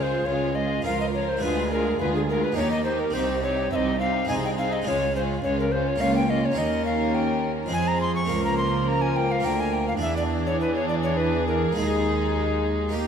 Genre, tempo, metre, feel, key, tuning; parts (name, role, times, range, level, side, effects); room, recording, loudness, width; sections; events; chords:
classical, baroque-style concerto movement with solo episodes; 104 BPM; 3/4; straight; A4 = 439 Hz
alto recorder; melody; 0.0-12.9 s; Ab4 to Db6; -27 LUFS; left 1 dB
rich chamber violin section; melody; 0.0-13.1 s; F4 to Bb4; -33 LUFS; left 3 dB
rich chamber violin section; second line; 0.0-13.1 s; Bb3 to F4; -31 LUFS; left 3 dB
harpsichord; accompaniment; 0.0-13.1 s; C2 to Db5; -31 LUFS; right 1 dB
rich chamber viola section; accompaniment; 0.0-13.1 s; E3 to C4; -30 LUFS; equal
warm chamber cello section; bass; 0.0-13.1 s; C2 to F2; -28 LUFS; right 4 dB
moderate recital hall reverb, RT60 1.5 s; -22 LUFS; side -7 dB against mid
0.0-13.1 A section
0.0 Db; 0.8 Bbm/Db; 1.4 Ddim; 2.6 Eb; 3.1 Cm; 4.3 Ab/C; 4.9 Db; 6.0 Bbm/Db; 6.6 Eb5; 7.7 Fm; 8.3 Bbm/Db; 9.4 Bb/D; 10.0 E7; 11.8 Ebsus4